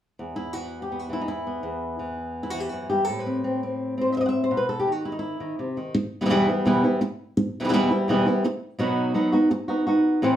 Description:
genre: flamenco.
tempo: free time.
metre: none.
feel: none.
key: E harmonic minor.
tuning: A4 = 440 Hz.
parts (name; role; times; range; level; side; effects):
flamenco guitar; melody; 0.2-10.4 s; E2 to F#5; -22 LUFS; equal; none.
room: wet studio reverb, RT60 0.6 s.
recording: heard from further back in the room.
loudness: -22 LUFS.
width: side -11 dB against mid.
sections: 0.2-5.9 A section; 5.9-10.4 B section.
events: none.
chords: 0.2 E5; 3.1 Amadd9; 4.5 B; 5.9 Em; 8.8 B.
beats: free time.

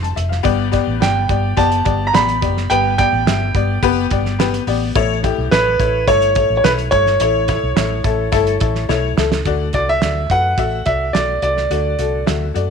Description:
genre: uptempo 1960s-style soul.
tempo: 107 BPM.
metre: 4/4.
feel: straight.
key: D major.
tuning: A4 = 440 Hz.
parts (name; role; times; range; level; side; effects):
bright upright piano; accompaniment; 0.0-12.7 s; G2 to A5; -20 LUFS; left 11 dB; none.
vintage muted fingered electric bass; bass; 0.0-12.7 s; F1 to F#2; -21 LUFS; equal; none.
cloth-damped thuddy drum kit; drums; 0.0-12.7 s; hi-hat, kick drum, snare drum; -21 LUFS; right 4 dB; none.
clear grand piano; melody; 1.0-12.2 s; B4 to B5; -17 LUFS; right 2 dB; slapback echo.
room: light reverb, studio ambience.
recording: 1960s-style stereo.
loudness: -14 LUFS.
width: side -6 dB against mid.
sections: 0.0-9.5 A section; 9.5-12.7 B section.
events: drum fill 8.9-9.5.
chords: 0.5 G; 5.0 A; 9.5 D.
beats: | 0.46 1.02 1.58 2.14 | 2.71 3.27 3.83 4.39 | 4.96 5.52 6.08 6.64 | 7.20 7.77 8.33 8.89 | 9.46 10.02 10.58 11.14 | 11.71 12.27.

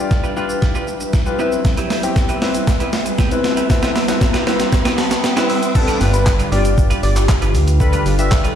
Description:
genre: dance-pop.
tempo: 117 BPM.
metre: 4/4.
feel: straight.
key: C major.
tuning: A4 = 438 Hz.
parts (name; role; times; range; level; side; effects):
clear baby grand piano; accompaniment; 0.0-8.6 s; C4 to A5; -22 LUFS; left 5 dB; sidechain pumping.
glassy FM pad; sustained chords; 0.0-8.6 s; D3 to E5; -23 LUFS; right 1 dB; ensemble chorus, built-in reverb, sidechain pumping.
riser; sound effects; 0.0-5.8 s; none; -26 LUFS; equal; none.
twelve-string electric guitar; riff; 0.1-8.6 s; G3 to B4; -26 LUFS; right 6 dB; lush chorus.
crisp 8-bit digital drum machine; drums; 0.1-8.6 s; crash cymbal, handclaps, hi-hat, kick drum, shaker, snare drum; -18 LUFS; equal; overdrive.
egg shaker; percussion; 1.6-8.6 s; none; -41 LUFS; left 10 dB; none.
octave-doubled lead; melody; 5.8-8.4 s; A4 to E5; -24 LUFS; left 1 dB; chorus, sidechain pumping, tape echo.
chorused synth bass; bass; 6.0-8.5 s; G1 to D2; -16 LUFS; equal; sidechain pumping.
room: light reverb, digital ambience.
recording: played on a big sound system in a bare room, stone room reverb.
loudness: -14 LUFS.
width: side -9 dB against mid.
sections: 0.0-5.8 A section; 5.8-8.6 B section.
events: build-up 0.0-5.8; drum fill 0.0-5.8; riser 0.0-5.8; grand piano fill 4.7-5.8; drop 5.8-8.6.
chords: 0.0 G7; 1.4 Cmaj7; 5.8 G7.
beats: 0.11 0.62 1.14 | 1.65 2.16 2.67 3.19 | 3.70 4.21 4.73 5.24 | 5.75 6.26 6.78 7.29 | 7.80 8.31.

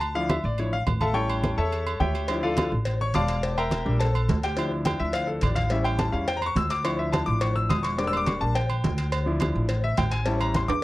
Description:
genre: latin, salsa.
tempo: 211 BPM.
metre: 4/4.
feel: straight.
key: D harmonic minor.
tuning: A4 = 440 Hz.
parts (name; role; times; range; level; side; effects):
clear concert grand piano; accompaniment; 0.0-10.8 s; F3 to E6; -27 LUFS; left 2 dB; none.
upright bass; bass; 0.0-10.8 s; E1 to E2; -27 LUFS; equal; none.
agogo bells and timbales; percussion; 0.0-10.8 s; none; -33 LUFS; right 6 dB; none.
congas; percussion; 0.0-10.8 s; none; -29 LUFS; equal; none.
cowbell; percussion; 2.3-10.7 s; none; -34 LUFS; left 3 dB; none.
room: little or no reverb.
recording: dry, close 1970s-style studio recording.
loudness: -23 LUFS.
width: side -17 dB against mid.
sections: 0.0-10.8 A section.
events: grand piano solo 0.0-10.8; drum fill 10.7.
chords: 0.0 Dmadd9; 1.2 A7; 2.3 Dmadd9; 3.4 Em7b5; 4.6 Dmadd9; 5.7 A7; 6.9 Dmadd9; 8.0 Em7b5; 9.1 Dmadd9; 10.3 A7.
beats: | 0.02 0.30 0.58 0.87 | 1.15 1.44 1.72 2.01 | 2.29 2.58 2.86 3.15 | 3.43 3.72 4.00 4.29 | 4.57 4.86 5.14 5.43 | 5.71 6.00 6.28 6.57 | 6.85 7.14 7.42 7.71 | 7.99 8.27 8.56 8.84 | 9.13 9.41 9.69 9.98 | 10.26 10.55 10.83.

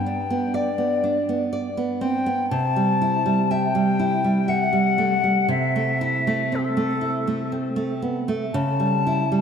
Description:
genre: romantic duo for flute and classical guitar.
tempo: 60 BPM.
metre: 3/4.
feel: rubato.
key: unclear.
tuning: A4 = 440 Hz.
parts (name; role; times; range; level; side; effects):
silver concert flute; melody; 0.0-9.4 s; G4 to A5; -24 LUFS; left 4 dB; ping-pong delay.
nylon-string guitar; accompaniment; 0.0-9.4 s; G2 to E5; -22 LUFS; right 2 dB; none.
room: wet lush hall reverb, RT60 2.4 s.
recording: dreamy mix soaked in reverb.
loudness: -20 LUFS.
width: side -7 dB against mid.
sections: 0.0-9.4 A section.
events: none.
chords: 0.0 G; 2.5 C; 5.5 Am/C; 8.6 A7/C#.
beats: 0.54 1.52 | 2.52 3.52 4.49 | 5.50 6.52 7.53 | 8.55.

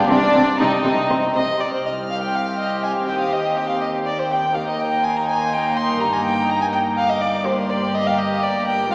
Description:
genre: classical, baroque-style concerto movement with solo episodes.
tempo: 123 BPM.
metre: 3/4.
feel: straight.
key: C minor.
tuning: A4 = 440 Hz.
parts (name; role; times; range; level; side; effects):
rich chamber violin section; melody; 0.0-8.9 s; D5 to F6; -28 LUFS; equal; none.
warm violin; melody; 0.0-8.9 s; D4 to C6; -20 LUFS; equal; none.
rich chamber violin section; second line; 0.0-8.9 s; D4 to G4; -25 LUFS; equal; none.
lute; accompaniment; 0.0-8.9 s; Eb2 to G4; -31 LUFS; equal; none.
warm chamber viola section; accompaniment; 0.1-8.9 s; Bb3 to C4; -27 LUFS; equal; none.
dark chamber cello section; bass; 0.1-8.9 s; C2 to C3; -26 LUFS; equal; none.
warm studio double bass section; bass; 0.1-8.9 s; G1 to Eb2; -33 LUFS; equal; none.
room: wet concert hall reverb, RT60 2.4 s.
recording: heard from further back in the room, small speaker sound.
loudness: -17 LUFS.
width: side -29 dB against mid.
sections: 0.0-1.6 A section; 1.6-8.9 B section.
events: none.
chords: 0.1 Cm; 1.6 C5; 3.1 Cm/Eb; 4.5 Eb; 6.0 Eb/G; 7.5 Gm.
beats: | 0.09 0.59 1.10 | 1.60 2.10 2.59 | 3.08 3.57 4.06 | 4.55 5.04 5.52 | 6.00 6.49 6.97 | 7.46 7.95 8.43 | 8.92.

